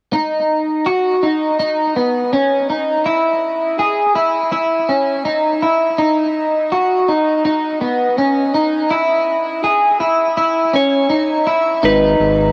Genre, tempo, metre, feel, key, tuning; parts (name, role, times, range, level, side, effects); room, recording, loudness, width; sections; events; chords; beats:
dream pop; 82 BPM; 4/4; straight; A4 = 438 Hz
electric guitar at the edge of break-up; arpeggios; 0.1-12.5 s; B3 to G#4; -16 LUFS; equal; analog chorus, analog delay
mellow electric guitar; melody; 10.8-12.5 s; B4 to C#5; -19 LUFS; equal; analog delay
fat analog bass; bass; 11.8-12.5 s; G#1; -20 LUFS; equal
moderate shimmer reverb, RT60 5.5 s; dry, gritty hardware recording, transformer saturation; -16 LUFS; mono
0.1-11.8 A section
0.1 Badd9; 3.1 C#madd9; 6.0 Badd9; 8.9 C#madd9; 11.8 G#m
| 0.13 0.86 1.59 2.32 | 3.06 3.79 4.52 5.25 | 5.98 6.71 7.45 8.18 | 8.91 9.64 10.37 11.10 | 11.84